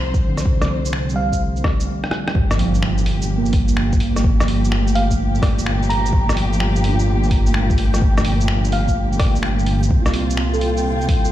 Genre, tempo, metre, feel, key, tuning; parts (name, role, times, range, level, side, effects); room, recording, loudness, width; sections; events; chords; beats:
future garage; 127 BPM; 4/4; swing 67% on 16ths; G minor; A4 = 440 Hz
muted felt-like synth keys; accompaniment; 0.0-11.3 s; D3 to A4; -24 LUFS; right 3 dB; chorus, vintage 12-bit sampler grit, sidechain pumping, ping-pong delay
dark chamber string section; sustained chords; 0.0-11.3 s; Bb2 to C5; -26 LUFS; left 2 dB; sidechain pumping
dark detuned saw bass; bass; 0.0-11.3 s; G1 to C2; -20 LUFS; equal; sidechain pumping
electronic kick drum; drums; 0.1-11.2 s; -18 LUFS; equal; studio ambience
lo-fi sampler-style drum kit; drums; 0.1-11.3 s; finger snaps, hi-hat, rim click, shaker; -26 LUFS; equal; studio ambience
bell-like FM electric piano; melody; 1.2-1.4, 5.0-9.0 s; F5 to Bb5; -28 LUFS; right 2 dB; chorus, tremolo, cassette tape, ping-pong delay
backwards swelling texture; texture; 3.5-11.3 s; G5; -33 LUFS; equal; built-in reverb
impact; sound effects; 2.4-4.2 s; -26 LUFS; equal
digital ambience; played on a big sound system in a bare room, stone room reverb; -16 LUFS; side -13 dB against mid
0.0-2.4 A section; 2.4-11.3 B section
stop 1.9-2.4; drum fill 2.0-2.4; impact 2.4-4.2
0.0 Csus4; 2.4 Gm7; 9.9 C7sus4
| 0.46 0.93 1.41 1.88 | 2.35 2.82 3.29 3.77 | 4.24 4.71 5.18 5.66 | 6.13 6.60 7.08 7.55 | 8.02 8.49 8.96 9.44 | 9.91 10.38 10.85